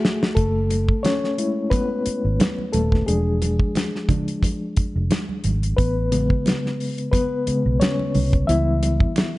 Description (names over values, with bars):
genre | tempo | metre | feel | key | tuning
lush 1970s-style soul | 89 BPM | 4/4 | swing 54% on 16ths | unclear | A4 = 441 Hz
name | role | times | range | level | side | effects
reed electric piano | accompaniment | 0.0-9.4 s | C#3 to E5 | -23 LUFS | left 2 dB | overdrive, fast tremolo
damped 70s drum kit | drums | 0.0-9.3 s | hi-hat, kick drum, snare drum | -22 LUFS | equal | none
vintage muted fingered electric bass | bass | 0.4-9.0 s | D#1 to C#2 | -22 LUFS | equal | none
congas | percussion | 0.7-9.3 s | none | -29 LUFS | right 4 dB | none
room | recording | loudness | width
light reverb, small room reverb | dark, warm production, nothing above 10.7 kHz | -19 LUFS | side -18 dB against mid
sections
0.4-9.4 A section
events
drum fill 0.0-0.4; band accent 0.0-0.4; reed electric piano solo 0.4-9.4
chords
0.4 F#m9; 3.1 E7b9; 5.8 Amaj9; 8.5 C#m7b5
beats
| 0.37 1.04 1.72 2.40 | 3.07 3.75 4.43 5.10 | 5.78 6.46 7.13 7.81 | 8.49 9.16